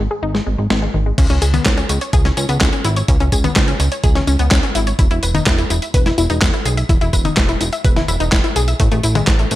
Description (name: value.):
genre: italo disco.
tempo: 126 BPM.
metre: 4/4.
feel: straight.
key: C# minor.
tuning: A4 = 440 Hz.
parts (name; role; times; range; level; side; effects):
wide unison pluck; arpeggios; 0.0-9.6 s; D#3 to E5; -21 LUFS; left 3 dB; digital delay.
chorused synth bass; bass; 0.0-9.6 s; E1 to C#2; -18 LUFS; equal; none.
dusty soul sampler-style drum kit; drums; 0.3-9.6 s; crash cymbal, handclaps, hi-hat, snare drum, tambourine, toms; -19 LUFS; left 1 dB; studio reverb, gated reverb.
electronic kick drum; drums; 1.2-9.4 s; none; -16 LUFS; equal; studio reverb.
room: little or no reverb.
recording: none.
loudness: -13 LUFS.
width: side -15 dB against mid.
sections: 0.0-1.2 A section; 1.2-9.6 B section.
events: none.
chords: 0.0 N.C.; 1.2 C#5; 5.0 E5; 8.8 A5.